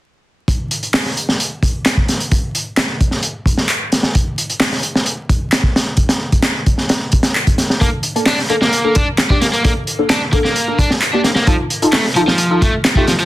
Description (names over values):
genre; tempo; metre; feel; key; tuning
breakbeat, breaks; 131 BPM; 4/4; straight; unclear; A4 = 440 Hz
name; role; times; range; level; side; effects
crunchy breakbeat drum kit; drums; 0.5-13.3 s; hi-hat, kick drum, snare drum; -15 LUFS; equal; none
electronic handclaps; drums; 0.9-12.9 s; none; -19 LUFS; equal; overdrive
overdriven electric guitar; riff; 7.8-13.3 s; F3 to D4; -17 LUFS; equal; dub echo
filtered dub chord stab; stabs; 7.8-13.0 s; Bb3 to A4; -19 LUFS; left 1 dB; phaser, ensemble chorus, dub echo
room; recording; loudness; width
light reverb; dense, heavily limited modern master, vinyl crackle; -13 LUFS; side -16 dB against mid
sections
0.5-13.3 A section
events
none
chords
0.5 N.C.; 7.8 Bbmaj7; 11.5 F7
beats
| 0.48 0.94 1.40 1.86 | 2.32 2.77 3.23 3.69 | 4.15 4.61 5.06 5.52 | 5.98 6.44 6.90 7.35 | 7.81 8.27 8.73 9.19 | 9.64 10.10 10.56 11.02 | 11.48 11.93 12.39 12.85